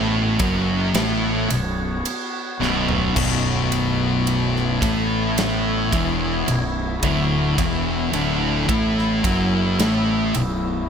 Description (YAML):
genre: stoner and doom metal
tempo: 54 BPM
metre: 4/4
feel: straight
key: B minor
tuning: A4 = 440 Hz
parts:
  - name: overtone-sweeping drone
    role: sustained chords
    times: 0.0-10.9 s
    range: B3 to C#5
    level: -29 LUFS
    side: left 2 dB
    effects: chorus, built-in reverb
  - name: thick fuzz guitar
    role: riff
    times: 0.0-10.8 s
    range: B1 to A3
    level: -23 LUFS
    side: left 10 dB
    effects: distortion
  - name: thick fuzz guitar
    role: riff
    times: 0.0-10.8 s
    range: B1 to A3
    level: -23 LUFS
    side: right 8 dB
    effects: distortion
  - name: fuzz fingered electric bass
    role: bass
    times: 0.0-10.9 s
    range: B0 to A1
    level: -26 LUFS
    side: equal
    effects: overdrive
  - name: big rock drum kit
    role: drums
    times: 0.4-10.6 s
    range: crash cymbal, kick drum, ride cymbal, snare drum, toms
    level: -27 LUFS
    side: right 1 dB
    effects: none
room: light reverb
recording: none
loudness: -18 LUFS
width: side -7 dB against mid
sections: 0.0-10.9 A section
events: drum fill 2.6-3.2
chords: 0.0 Bm